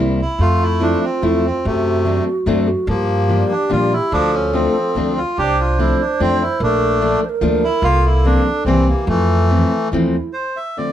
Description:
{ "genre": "musette waltz", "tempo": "145 BPM", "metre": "3/4", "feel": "straight", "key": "F major", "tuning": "A4 = 442 Hz", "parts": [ { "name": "fingerpicked plugged-in steel-string acoustic guitar", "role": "accompaniment", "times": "0.0-10.9 s", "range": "D3 to E4", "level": "-19 LUFS", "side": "left 2 dB", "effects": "none" }, { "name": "upright bass", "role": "bass", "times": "0.0-10.2 s", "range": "Bb1 to Bb2", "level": "-19 LUFS", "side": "equal", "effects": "none" }, { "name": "bandoneon", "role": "melody", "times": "0.2-10.9 s", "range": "C3 to E5", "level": "-19 LUFS", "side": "equal", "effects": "none" }, { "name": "hollow bass bansuri", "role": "second line", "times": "0.4-10.3 s", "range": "E4 to D5", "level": "-22 LUFS", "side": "right 4 dB", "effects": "none" } ], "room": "moderate small room reverb, RT60 0.6 s", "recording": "dark, warm production", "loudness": "-14 LUFS", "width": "side -11 dB against mid", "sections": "0.0-10.3 A section", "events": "none", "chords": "0.4 Fmaj7; 1.6 D7/F#; 2.9 Gm7; 4.1 Dm7; 5.4 F6/C; 6.6 Bbmaj7; 7.8 C7sus4; 8.7 C7; 9.1 Fmaj7; 10.3 Dm7" }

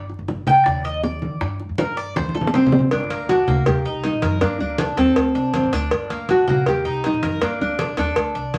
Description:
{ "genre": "latin, Cuban son and guajira", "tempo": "160 BPM", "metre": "4/4", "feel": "straight", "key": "G harmonic minor", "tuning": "A4 = 440 Hz", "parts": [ { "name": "Cuban tres", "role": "arpeggios", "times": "0.0-8.6 s", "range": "Bb3 to G5", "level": "-27 LUFS", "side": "equal", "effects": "none" }, { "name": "upright bass", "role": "bass", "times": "0.0-8.6 s", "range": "G1 to Eb3", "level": "-31 LUFS", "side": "equal", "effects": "none" }, { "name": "bongos and cowbell", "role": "percussion", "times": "0.1-8.6 s", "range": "none", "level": "-27 LUFS", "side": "equal", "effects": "none" }, { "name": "congas", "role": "percussion", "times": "0.1-8.6 s", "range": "none", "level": "-27 LUFS", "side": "equal", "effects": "none" }, { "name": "nylon-string guitar", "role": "melody", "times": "2.5-8.6 s", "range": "C4 to G4", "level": "-22 LUFS", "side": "equal", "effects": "none" } ], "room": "wet studio reverb, RT60 0.6 s", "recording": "vinyl crackle", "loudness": "-20 LUFS", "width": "mono", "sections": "0.0-2.9 A section; 2.9-8.6 B section", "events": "Cuban tres solo 0.0-2.9; drum fill 2.2-2.9", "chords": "0.0 N.C.; 1.4 Gm; 2.2 Amadd11; 2.9 Gm; 3.7 Eb; 4.4 Gmadd9; 5.2 D5; 5.9 Gm; 6.7 Eb; 7.4 Gmadd9" }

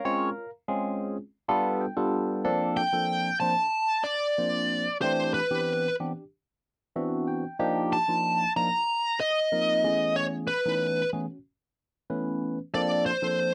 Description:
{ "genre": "jazz", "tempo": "93 BPM", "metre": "4/4", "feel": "straight", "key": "unclear", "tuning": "A4 = 440 Hz", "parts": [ { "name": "barky tine electric piano", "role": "accompaniment", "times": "0.0-13.5 s", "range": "E3 to Bb5", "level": "-31 LUFS", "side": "equal", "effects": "phaser" }, { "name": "smooth overdriven lead guitar", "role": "melody", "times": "2.8-13.5 s", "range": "B4 to Bb5", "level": "-27 LUFS", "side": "equal", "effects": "slapback echo" } ], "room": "light reverb", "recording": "dry, close 1970s-style studio recording", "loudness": "-27 LUFS", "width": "mono", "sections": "0.0-2.4 A section; 2.4-13.5 B section", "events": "tine electric piano fill 1.5-2.4, 6.6-7.6", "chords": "0.0 Bbm9; 1.2 G9; 2.4 C13sus4; 5.0 D13sus4; 7.6 F13sus4; 9.8 B13sus4; 12.7 C13sus4" }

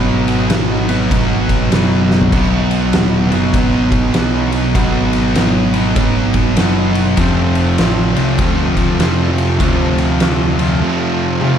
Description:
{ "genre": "stoner and doom metal", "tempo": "99 BPM", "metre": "4/4", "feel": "swing 63% on 8ths", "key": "unclear", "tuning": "A4 = 442 Hz", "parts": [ { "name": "crunchy overdriven guitar", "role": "riff", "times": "0.0-11.6 s", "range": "F2 to B4", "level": "-21 LUFS", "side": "equal", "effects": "none" }, { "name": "thick fuzz guitar", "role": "riff", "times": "0.0-11.6 s", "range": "F2 to B3", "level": "-19 LUFS", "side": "left 8 dB", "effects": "distortion" }, { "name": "thick fuzz guitar", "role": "riff", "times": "0.0-11.6 s", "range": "F2 to B3", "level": "-18 LUFS", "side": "right 8 dB", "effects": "distortion" }, { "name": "overdriven picked electric bass", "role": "bass", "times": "0.0-10.8 s", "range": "D#1 to F2", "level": "-19 LUFS", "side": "equal", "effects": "none" }, { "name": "oversized low-tuned drum kit", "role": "drums", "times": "0.3-11.6 s", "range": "crash cymbal, kick drum, ride cymbal, snare drum, toms", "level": "-18 LUFS", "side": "equal", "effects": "none" } ], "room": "small room ambience", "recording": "dark, warm production", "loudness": "-12 LUFS", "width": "side -8 dB against mid", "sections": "0.0-11.6 A section", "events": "drum fill 2.0-2.3, 11.4", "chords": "0.0 B; 7.2 F" }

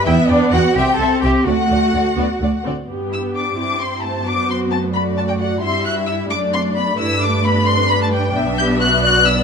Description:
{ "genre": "quick classical-period movement for string orchestra", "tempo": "88 BPM (dotted quarters)", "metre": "6/8", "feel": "straight", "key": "G major", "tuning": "A4 = 440 Hz", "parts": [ { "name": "clear studio violin section", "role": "second line", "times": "0.0-9.4 s", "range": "B4 to A5", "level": "-22 LUFS", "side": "left 3 dB", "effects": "none" }, { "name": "rich studio viola section", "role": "accompaniment", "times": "0.0-9.4 s", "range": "G3 to G4", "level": "-20 LUFS", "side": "equal", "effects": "none" }, { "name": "clear studio cello section", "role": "bass", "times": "0.0-9.3 s", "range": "F#3 to A4", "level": "-24 LUFS", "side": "right 1 dB", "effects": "none" }, { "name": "rich studio violin section", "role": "melody", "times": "0.1-9.4 s", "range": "D5 to G6", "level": "-20 LUFS", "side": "left 3 dB", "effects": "none" }, { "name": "rich studio double bass section", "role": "bass", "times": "0.1-9.4 s", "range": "B1 to G2", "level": "-21 LUFS", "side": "right 3 dB", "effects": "none" } ], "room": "moderate large studio reverb, RT60 1.2 s", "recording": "dark, warm production", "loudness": "-15 LUFS", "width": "side -6 dB against mid", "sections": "0.0-2.9 A section; 2.9-9.4 B section", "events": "none", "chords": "0.1 Em; 0.8 C; 1.5 D; 2.9 G; 3.6 Am7/G; 4.3 D7/F#; 5.6 C/G; 6.3 D/F#; 7.0 G; 8.3 G/B" }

